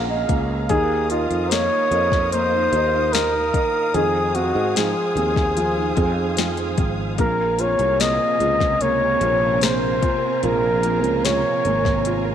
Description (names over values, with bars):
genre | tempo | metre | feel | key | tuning
pop ballad | 74 BPM | 4/4 | straight | Bb minor | A4 = 440 Hz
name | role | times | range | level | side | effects
breathy flugelhorn | melody | 0.0-12.3 s | F4 to Eb5 | -20 LUFS | left 1 dB | slapback echo
felt-muted upright piano | accompaniment | 0.0-12.3 s | Eb3 to Bb5 | -27 LUFS | left 2 dB | none
warm symphonic string section | sustained chords | 0.0-12.3 s | Db4 to Eb6 | -30 LUFS | equal | none
flamenco guitar | arpeggios | 0.0-12.3 s | Bb2 to Bb4 | -30 LUFS | right 12 dB | slapback echo
sustaining fretless electric bass | bass | 0.0-12.3 s | Ab1 to Ab2 | -25 LUFS | right 1 dB | none
smooth R&B drum kit | drums | 0.3-12.2 s | hi-hat, kick drum, snare drum | -24 LUFS | left 2 dB | none
dark studio cello section | second line | 7.2-12.3 s | C3 to C4 | -28 LUFS | right 11 dB | none
room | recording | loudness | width
moderate echo chamber reverb, RT60 2.5 s | 1960s-style stereo | -17 LUFS | side -9 dB against mid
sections
0.0-12.3 A section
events
felt piano fill 0.0-0.7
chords
0.0 Bbm7; 0.7 Ebsus2; 3.9 Fm7; 7.2 Bbm7